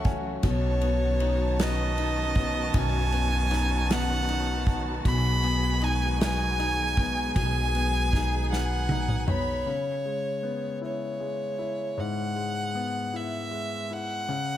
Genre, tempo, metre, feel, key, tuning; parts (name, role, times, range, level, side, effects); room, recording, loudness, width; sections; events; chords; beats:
six-eight pop ballad; 52 BPM (dotted quarters); 6/8; straight; C# minor; A4 = 441 Hz
rich violin; melody; 0.0-14.6 s; C#5 to B5; -30 LUFS; right 1 dB; ping-pong delay
warm concert grand piano; accompaniment; 0.0-14.6 s; F#2 to G#5; -32 LUFS; left 5 dB
muted studio string section; sustained chords; 0.0-9.6 s; D#3 to G#4; -35 LUFS; right 1 dB
upright bass; bass; 0.0-9.6 s; B1 to C#2; -28 LUFS; equal
unplugged drum kit; drums; 0.0-9.5 s; kick drum, ride cymbal, snare drum, toms; -28 LUFS; equal
warm symphonic violin section; second line; 0.4-9.7 s; G#5 to B5; -36 LUFS; right 2 dB
small room ambience; -24 LUFS; side -12 dB against mid
0.0-9.7 A section; 9.7-14.6 B section
grand piano fill 0.0-0.4; drum fill 8.5-9.7
0.4 Badd9; 5.0 G#m7/B; 9.7 C#m7
| 0.44 1.59 | 2.74 3.90 | 5.05 6.20 | 7.36 8.51 | 9.67 10.82 | 11.98 13.13 | 14.29